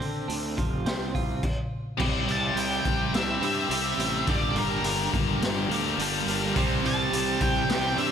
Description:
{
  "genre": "quiet-loud alternative rock",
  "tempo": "105 BPM",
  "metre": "4/4",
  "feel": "straight",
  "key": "unclear",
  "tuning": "A4 = 441 Hz",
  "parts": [
    { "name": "twelve-string electric guitar", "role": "arpeggios", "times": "0.0-8.1 s", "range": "G2 to G4", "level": "-31 LUFS", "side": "right 4 dB", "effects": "tremolo" },
    { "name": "fuzz fingered electric bass", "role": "bass", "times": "0.0-8.1 s", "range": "F1 to D3", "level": "-32 LUFS", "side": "equal", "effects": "overdrive" },
    { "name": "raw garage drum kit", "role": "drums", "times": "0.0-8.1 s", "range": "crash cymbal, hi-hat, kick drum, snare drum", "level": "-29 LUFS", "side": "equal", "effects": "none" },
    { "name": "scooped high-gain guitar", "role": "riff", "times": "2.0-8.1 s", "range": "G2 to C4", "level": "-30 LUFS", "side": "left 11 dB", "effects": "distortion, slapback echo" },
    { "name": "octave-fuzz lead guitar", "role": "melody", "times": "2.3-8.1 s", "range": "Bb4 to A5", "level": "-30 LUFS", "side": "right 1 dB", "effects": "distortion, slapback echo" },
    { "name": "thick fuzz guitar", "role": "riff", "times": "6.6-8.1 s", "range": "C3 to C4", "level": "-30 LUFS", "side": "right 10 dB", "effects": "distortion, slapback echo" }
  ],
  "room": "moderate lush hall reverb, RT60 2.0 s",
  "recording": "big arena sound",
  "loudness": "-24 LUFS",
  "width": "side -8 dB against mid",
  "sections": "0.0-2.0 A section; 2.0-8.1 B section",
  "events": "none",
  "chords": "0.0 Csus2/D; 0.6 F5; 2.0 C; 4.3 Gm; 6.5 C"
}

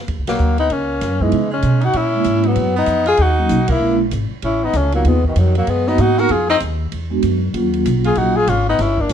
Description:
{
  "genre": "jazz, small-group swing and bop",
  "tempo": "193 BPM",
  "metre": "4/4",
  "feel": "swing 62% on 8ths",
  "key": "Eb minor",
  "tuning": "A4 = 445 Hz",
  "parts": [
    { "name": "upright bass", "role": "bass", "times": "0.1-9.1 s", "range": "G1 to Db3", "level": "-18 LUFS", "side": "equal", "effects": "none" },
    { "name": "open jazz drum kit", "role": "drums", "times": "0.1-9.1 s", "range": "hi-hat, kick drum, ride cymbal, snare drum", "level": "-30 LUFS", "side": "right 1 dB", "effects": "none" },
    { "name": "breathy tenor saxophone", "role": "melody", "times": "0.3-9.1 s", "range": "Eb3 to Bb4", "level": "-18 LUFS", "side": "left 3 dB", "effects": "none" },
    { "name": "bright tenor saxophone", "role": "second line", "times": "0.3-9.1 s", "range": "Cb3 to Gb4", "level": "-24 LUFS", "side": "right 6 dB", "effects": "none" },
    { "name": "vibraphone with soft mallets", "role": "accompaniment", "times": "1.2-9.1 s", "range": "F#3 to Gb4", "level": "-19 LUFS", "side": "right 2 dB", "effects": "none" }
  ],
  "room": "light reverb",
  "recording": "dark, warm production",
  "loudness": "-14 LUFS",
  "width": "side -8 dB against mid",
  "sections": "0.1-9.1 A section",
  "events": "band accent 0.2, 3.7",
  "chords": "0.1 Ebm7; 1.3 Db5; 1.9 Gb9 (rootless); 2.6 B; 3.8 Bbm7b5; 4.4 Aadd9; 5.1 Abm7; 6.3 Ab5; 6.9 E9; 7.5 Ebm7"
}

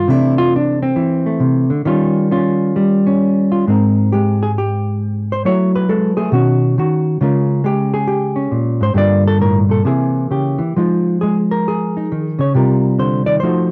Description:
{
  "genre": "solo jazz",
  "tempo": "136 BPM",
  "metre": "4/4",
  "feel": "swing 65% on 8ths, rubato",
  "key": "Ab major from 3.7 s",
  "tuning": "A4 = 442 Hz",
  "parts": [
    { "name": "hollow-body jazz guitar", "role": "solo", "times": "0.0-13.7 s", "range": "G2 to D5", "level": "-15 LUFS", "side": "equal", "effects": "cassette tape" }
  ],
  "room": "moderate small room reverb, RT60 0.6 s",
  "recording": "home recording on cassette",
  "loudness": "-16 LUFS",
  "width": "mono",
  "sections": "0.0-3.7 A section; 3.7-13.7 B section",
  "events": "hollow-body jazz guitar solo 0.0-3.7",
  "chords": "0.1 C69; 1.8 Eb9; 3.7 Abmaj9; 5.4 Gbm7; 6.3 Badd9; 7.2 Db6; 9.0 Gm7; 9.8 C7b13; 10.8 Fm7; 12.5 Cm11"
}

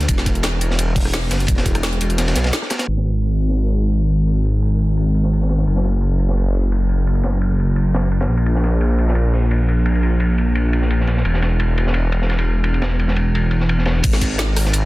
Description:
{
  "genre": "liquid drum and bass",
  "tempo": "172 BPM",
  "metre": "4/4",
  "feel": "straight",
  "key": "unclear",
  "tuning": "A4 = 440 Hz",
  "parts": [
    { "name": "swelling detuned saw bass", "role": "bass", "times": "0.0-14.9 s", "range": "E1 to B1", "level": "-16 LUFS", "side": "equal", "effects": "none" },
    { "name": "crunchy breakbeat drum kit", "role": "drums", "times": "0.0-14.8 s", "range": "hi-hat, ride cymbal, snare drum", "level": "-26 LUFS", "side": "equal", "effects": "high-pass filter on cymbals, low-pass filter on cymbals, high-pass filter on hats, low-pass filter on hats, high-pass filter on snare, low-pass filter on snare, high-pass filter on room, low-pass filter on room" },
    { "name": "drum and bass drum kit", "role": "drums", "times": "0.0-3.0, 14.0-14.8 s", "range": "crash cymbal, hi-hat, rim click, snare drum", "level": "-24 LUFS", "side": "equal", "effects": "overdrive" },
    { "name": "electronic kick drum", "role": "drums", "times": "0.1-1.7, 14.0-14.3 s", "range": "none", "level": "-18 LUFS", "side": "equal", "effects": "overdrive" }
  ],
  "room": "small room ambience",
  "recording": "dense, heavily limited modern master, low-pass filter",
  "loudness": "-16 LUFS",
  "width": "side -19 dB against mid",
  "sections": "0.0-2.9 A section; 2.9-14.0 B section",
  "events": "kick drops out 2.2-2.9; filter sweep 2.9-14.0",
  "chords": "none"
}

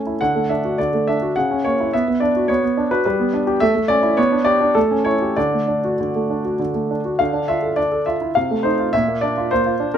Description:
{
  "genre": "classical-period piano sonatina",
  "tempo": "96-108 BPM",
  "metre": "3/4",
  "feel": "rubato",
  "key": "D major",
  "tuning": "A4 = 440 Hz",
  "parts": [
    { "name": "clear grand piano", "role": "solo", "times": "0.0-10.0 s", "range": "Bb2 to F#5", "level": "-16 LUFS", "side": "equal", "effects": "none" }
  ],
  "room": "light reverb",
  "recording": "minimal, uncompressed stereo recording",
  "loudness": "-16 LUFS",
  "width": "side -9 dB against mid",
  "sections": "0.0-7.2 A section; 7.2-10.0 B section",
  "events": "none",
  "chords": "0.2 D; 1.4 F#7/C#; 1.9 Bm; 3.0 G; 3.6 A; 4.2 G/B; 4.8 A7; 5.4 D; 7.2 Dm; 8.4 F7/C; 8.9 Bb"
}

